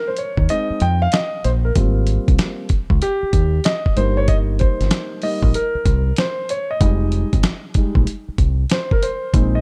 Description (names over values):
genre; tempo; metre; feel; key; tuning
hip hop, jazz-hop; 95 BPM; 4/4; swing 65% on 16ths; F minor; A4 = 441 Hz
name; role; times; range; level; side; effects
dark grand piano; accompaniment; 0.0-9.6 s; G3 to G5; -24 LUFS; equal; none
dusty soul sampler-style drum kit; drums; 0.2-9.5 s; hi-hat, kick drum, snare drum; -21 LUFS; equal; none
deep dub fingered electric bass; bass; 0.4-9.6 s; F1 to F2; -20 LUFS; equal; none
room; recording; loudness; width
little or no reverb; dark, warm production; -18 LUFS; mono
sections
0.0-9.6 A section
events
grand piano solo 0.0-9.6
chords
0.0 Bb9sus4; 1.8 Abmaj13; 4.0 Cm7/G; 6.8 Fm9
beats
0.49 1.13 | 1.76 2.39 3.02 3.65 | 4.29 4.92 5.55 6.18 | 6.81 7.44 8.07 8.71 | 9.34